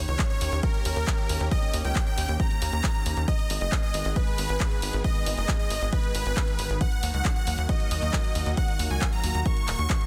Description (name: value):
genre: uplifting trance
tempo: 136 BPM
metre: 4/4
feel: straight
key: unclear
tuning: A4 = 437 Hz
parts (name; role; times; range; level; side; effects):
- lush unison pad; sustained chords; 0.0-10.1 s; D#3 to G#4; -39 LUFS; equal; chorus, phaser, sidechain pumping
- tight sequencer bass; bass; 0.0-9.9 s; D#1 to D#2; -30 LUFS; equal; sidechain pumping
- supersaw chords; melody; 0.1-10.1 s; A#4 to C#6; -34 LUFS; equal; sidechain pumping, tape echo
- techno drum kit; drums; 0.1-10.1 s; handclaps, hi-hat; -35 LUFS; equal; none
- electronic kick drum; drums; 0.2-10.0 s; none; -29 LUFS; equal; none
room: digital ambience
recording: dense, heavily limited modern master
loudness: -26 LUFS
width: mono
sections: 0.0-10.1 A section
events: none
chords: 0.0 D#7; 3.3 G#m; 6.8 D#m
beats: 0.19 0.63 1.07 | 1.51 1.96 2.40 2.84 | 3.28 3.72 4.16 4.60 | 5.04 5.49 5.93 6.37 | 6.81 7.25 7.69 8.13 | 8.57 9.02 9.46 9.90